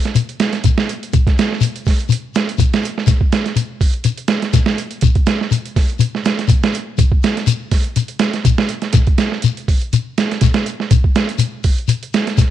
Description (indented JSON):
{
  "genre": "afrobeat",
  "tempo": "123 BPM",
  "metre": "4/4",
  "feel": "swing 54% on 16ths",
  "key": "none",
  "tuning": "none",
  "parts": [
    { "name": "boom bap sampler-style drum kit", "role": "drums", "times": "0.1-12.5 s", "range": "hi-hat, kick drum, snare drum", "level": "-15 LUFS", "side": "right 2 dB", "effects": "none" },
    { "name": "shekere", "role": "percussion", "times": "0.2-12.5 s", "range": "none", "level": "-16 LUFS", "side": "left 6 dB", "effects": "none" }
  ],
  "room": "light reverb",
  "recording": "1960s-style stereo",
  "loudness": "-14 LUFS",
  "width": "side -11 dB against mid",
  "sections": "0.0-12.5 A section",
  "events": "none",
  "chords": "none"
}